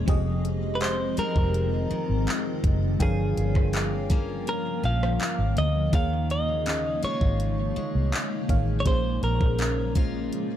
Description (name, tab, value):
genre	contemporary R&B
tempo	82 BPM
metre	4/4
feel	straight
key	F minor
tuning	A4 = 440 Hz
part	FM electric piano with soft pad layer	accompaniment	0.0-10.6 s	Bb2 to G5	-33 LUFS	equal	chorus, phaser
part	granular cloud pad	sustained chords	0.0-10.6 s	Db3 to F4	-33 LUFS	left 1 dB	built-in reverb
part	picked steel-string acoustic guitar	arpeggios	0.0-10.6 s	F2 to F4	-35 LUFS	left 5 dB	digital delay
part	vintage muted fingered electric bass	bass	0.0-10.3 s	F1 to Eb2	-26 LUFS	equal	none
part	smooth R&B drum kit	drums	0.1-10.5 s	handclaps, hi-hat, kick drum, rim click	-25 LUFS	equal	none
part	direct-recorded clean electric guitar	melody	0.8-9.9 s	Ab4 to F5	-31 LUFS	right 1 dB	digital delay
room	little or no reverb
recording	dark, warm production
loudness	-23 LUFS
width	side -11 dB against mid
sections	0.0-10.6 A section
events	none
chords	0.1 Fm7; 3.0 Gm7b5; 5.9 Eb9sus4; 8.9 Bbm7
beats	| 0.08 0.81 1.54 2.27 | 3.00 3.74 4.47 5.20 | 5.93 6.66 7.39 8.13 | 8.86 9.59 10.32